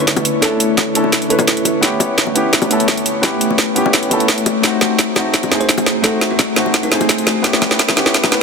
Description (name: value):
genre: liquid drum and bass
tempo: 171 BPM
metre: 4/4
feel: straight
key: unclear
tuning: A4 = 441 Hz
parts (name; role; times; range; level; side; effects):
- buzzing kalimba; melody; 0.0-1.9, 5.6-7.2 s; D#4 to B#4; -24 LUFS; right 3 dB; low-pass filter, tape echo
- felt-muted upright piano; accompaniment; 0.0-8.4 s; A3 to B4; -19 LUFS; equal; dub echo
- glassy FM pad; sustained chords; 0.0-8.4 s; D3 to C#5; -20 LUFS; left 2 dB; ensemble chorus, built-in reverb, sidechain pumping
- drum and bass drum kit; drums; 0.1-8.4 s; hi-hat, snare drum; -16 LUFS; right 1 dB; overdrive
- electronic kick drum; drums; 0.1-8.2 s; none; -26 LUFS; right 1 dB; none
- bongos; percussion; 0.2-8.3 s; none; -24 LUFS; left 6 dB; none
room: moderate huge ambient reverb, RT60 7.5 s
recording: dense, heavily limited modern master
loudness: -12 LUFS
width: side -4 dB against mid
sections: 0.0-8.4 A section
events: build-up 0.0-8.4; drum fill 0.0-8.4; filter sweep on kalimba 0.0-8.4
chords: 0.0 Bm11; 1.8 A7; 4.6 G#7b9; 7.4 C#m7b5